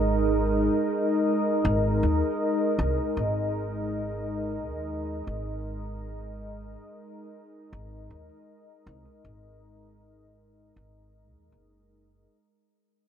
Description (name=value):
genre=ambient dub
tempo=79 BPM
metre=4/4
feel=swing 53% on 16ths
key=unclear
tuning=A4 = 440 Hz
part: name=warm analog pad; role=sustained chords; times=0.0-12.3 s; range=Ab3 to Eb5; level=-27 LUFS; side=equal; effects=lush chorus
part: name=upright bass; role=bass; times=0.0-12.2 s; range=Gb1 to Eb2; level=-30 LUFS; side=equal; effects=none
room=moderate huge ambient reverb, RT60 6.2 s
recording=none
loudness=-24 LUFS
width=side -8 dB against mid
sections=0.0-12.3 A section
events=fade-out 0.0-12.3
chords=0.0 Absus2